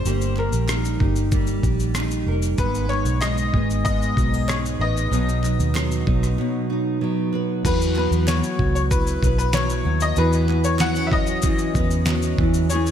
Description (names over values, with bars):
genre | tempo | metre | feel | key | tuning
acoustic pop | 95 BPM | 4/4 | straight | unclear | A4 = 436 Hz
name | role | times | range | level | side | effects
bright upright piano | melody | 0.0-12.9 s | A#4 to F#5 | -26 LUFS | left 4 dB | ping-pong delay
nylon-string guitar | accompaniment | 0.0-12.9 s | G#2 to B4 | -25 LUFS | equal | double-tracked left and right, slapback echo
fingerpicked steel-string acoustic guitar | arpeggios | 0.0-12.9 s | E3 to G#4 | -30 LUFS | right 6 dB | slapback echo, ping-pong delay
vintage muted fingered electric bass | bass | 0.0-12.9 s | F1 to E2 | -22 LUFS | equal | none
dusty soul sampler-style drum kit | drums | 0.1-12.9 s | crash cymbal, kick drum, rim click, shaker, snare drum | -24 LUFS | equal | overdrive
group handclap | percussion | 0.4-12.2 s | none | -39 LUFS | right 4 dB | none
room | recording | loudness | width
moderate lush hall reverb, RT60 2.5 s | big arena sound | -18 LUFS | side -9 dB against mid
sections
0.0-7.6 A section; 7.6-12.9 B section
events
break 6.4-7.6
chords
0.1 D#/G; 2.6 G#m; 5.1 B; 7.6 Esus2; 10.2 Bsus2/E; 12.4 F#sus2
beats
| 0.06 0.69 1.32 1.96 | 2.59 3.22 3.85 4.48 | 5.12 5.75 6.38 7.01 | 7.64 8.28 8.91 9.54 | 10.17 10.80 11.44 12.07 | 12.70